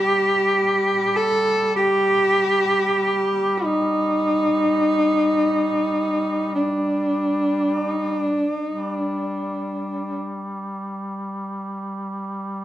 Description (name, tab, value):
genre	caucasian folk, Caucasian lament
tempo	free time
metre	none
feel	none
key	unclear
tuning	A4 = 440 Hz
part	dark cello	melody	0.0-10.2 s	D4 to A4	-19 LUFS	equal	none
part	clear duduk	drone	0.0-12.6 s	G3	-28 LUFS	equal	none
room	moderate recital hall reverb, RT60 1.6 s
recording	none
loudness	-19 LUFS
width	side -13 dB against mid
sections	0.0-12.6 A section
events	none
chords	none